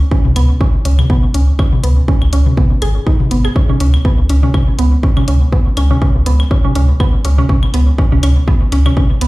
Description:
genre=minimal techno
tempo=122 BPM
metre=4/4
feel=swing 55% on 16ths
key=unclear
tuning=A4 = 441 Hz
part: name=rubbery square bass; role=bass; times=0.0-9.3 s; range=G#1 to C#2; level=-11 LUFS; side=equal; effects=sidechain pumping
part: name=mallet-like synth pluck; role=riff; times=0.1-9.3 s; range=B3 to G#4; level=-20 LUFS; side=right 2 dB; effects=chorus, phaser, sidechain pumping, ping-pong delay
part: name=electronic kick drum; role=drums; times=0.1-9.1 s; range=none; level=-12 LUFS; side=equal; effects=none
part: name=electronic toms and claves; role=percussion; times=0.2-8.9 s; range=none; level=-20 LUFS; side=left 2 dB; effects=overdrive, tape echo
part: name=electronic hi-hat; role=drums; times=0.4-9.3 s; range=none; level=-26 LUFS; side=left 2 dB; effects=none
room=light reverb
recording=played on a big sound system in a bare room, large studio reverb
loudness=-10 LUFS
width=side -20 dB against mid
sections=0.0-9.3 A section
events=filter sweep on synth arpeggio sound 0.0-9.3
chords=none

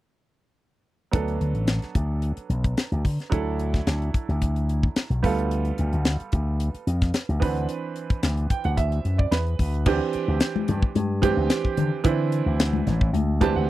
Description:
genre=electric jazz fusion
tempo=110 BPM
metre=4/4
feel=straight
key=D major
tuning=A4 = 441 Hz
part: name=bright grand piano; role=accompaniment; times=1.1-13.7 s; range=E3 to A5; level=-28 LUFS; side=right 7 dB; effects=none
part: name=slap bass with an envelope filter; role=bass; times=1.1-13.7 s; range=A1 to D3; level=-24 LUFS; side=left 1 dB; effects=none
part: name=tight funk drum kit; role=drums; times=1.1-13.5 s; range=crash cymbal, hi-hat, kick drum, snare drum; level=-23 LUFS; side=left 1 dB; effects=none
part: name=congas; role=percussion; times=10.6-13.5 s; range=none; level=-28 LUFS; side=left 8 dB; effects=none
room=little or no reverb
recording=dry, close 1970s-style studio recording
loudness=-22 LUFS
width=side -15 dB against mid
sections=1.1-9.9 A section; 9.9-13.7 B section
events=grand piano fill 8.2-9.9, 13.1-13.7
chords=1.1 D6; 3.3 E9sus4/D; 5.2 G9/D; 7.4 Cmaj9/D; 9.9 D9sus4

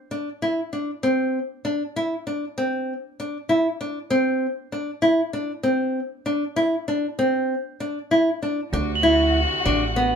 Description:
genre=contemporary instrumental, chamber music in an uneven meter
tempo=195 BPM (eighths)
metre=5/8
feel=straight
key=unclear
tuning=A4 = 439 Hz
part: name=nylon-string guitar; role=arpeggios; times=0.1-10.1 s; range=B3 to E4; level=-21 LUFS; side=equal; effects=none
part: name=warm studio string section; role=sustained chords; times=8.7-10.2 s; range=C3 to F#4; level=-27 LUFS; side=left 3 dB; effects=none
part: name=upright bass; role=bass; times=8.7-10.1 s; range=A1 to D2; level=-25 LUFS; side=right 2 dB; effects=none
part: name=crotales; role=texture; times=9.0-10.2 s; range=F#7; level=-24 LUFS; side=right 2 dB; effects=none
room=light reverb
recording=minimal, uncompressed stereo recording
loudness=-21 LUFS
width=side -7 dB against mid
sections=0.0-8.7 A section; 8.7-10.2 B section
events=none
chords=0.0 Cadd9; 8.7 D7

